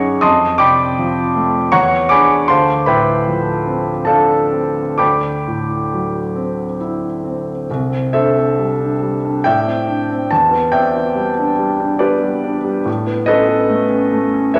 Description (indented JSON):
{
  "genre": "classical, impressionist solo piano",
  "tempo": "61-81 BPM",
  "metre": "3/4",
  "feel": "rubato",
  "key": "unclear",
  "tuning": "A4 = 439 Hz",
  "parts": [
    { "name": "clear grand piano", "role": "solo", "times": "0.0-14.6 s", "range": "C2 to Eb6", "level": "-16 LUFS", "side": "equal", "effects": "none" }
  ],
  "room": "wet recital hall reverb, RT60 1.3 s",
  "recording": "none",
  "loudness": "-16 LUFS",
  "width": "mono",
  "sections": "0.0-7.7 A section; 7.7-14.6 B section",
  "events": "none",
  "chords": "0.2 F13; 1.7 E13; 2.5 Dm7; 5.0 D9; 7.7 C69; 9.4 Am7; 10.3 Em7; 12.9 Aadd9"
}